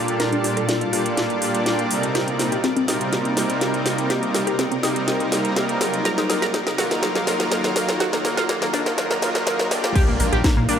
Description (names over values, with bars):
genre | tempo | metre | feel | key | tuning
progressive house | 123 BPM | 4/4 | straight | unclear | A4 = 440 Hz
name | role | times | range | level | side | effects
shimmering ambient pad | sustained chords | 0.0-10.8 s | Eb2 to F5 | -28 LUFS | equal | chorus, built-in reverb, sidechain pumping
glassy wavetable pluck | arpeggios | 0.0-10.8 s | Bb3 to Bb4 | -27 LUFS | left 1 dB | chorus, sidechain pumping, digital delay
soft supersaw | stabs | 0.0-10.8 s | Bb2 to D5 | -23 LUFS | right 1 dB | sidechain pumping, digital delay
house drum kit | drums | 0.1-10.8 s | crash cymbal, hi-hat, snare drum | -24 LUFS | equal | overdrive
electronic kick drum | drums | 10.0-10.5 s | none | -18 LUFS | equal | none
vintage drum kit | drums | 10.0-10.8 s | hi-hat, snare drum | -36 LUFS | right 2 dB | none
impact | sound effects | 10.1-10.8 s | none | -27 LUFS | equal | none
round analog bass | bass | 10.2-10.7 s | Bb1 to Bb2 | -21 LUFS | equal | sidechain pumping
room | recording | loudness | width
moderate huge ambient reverb, RT60 5.2 s | high-pass filter | -19 LUFS | side -8 dB against mid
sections
0.0-10.0 A section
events
build-up 0.0-10.0; drum fill 0.0-10.0; filter sweep on synth arpeggio sound 0.0-10.0; impact 10.0-10.8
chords
0.0 Gm7/Bb; 2.1 Cm7; 6.1 Ebmadd9; 10.0 Bb6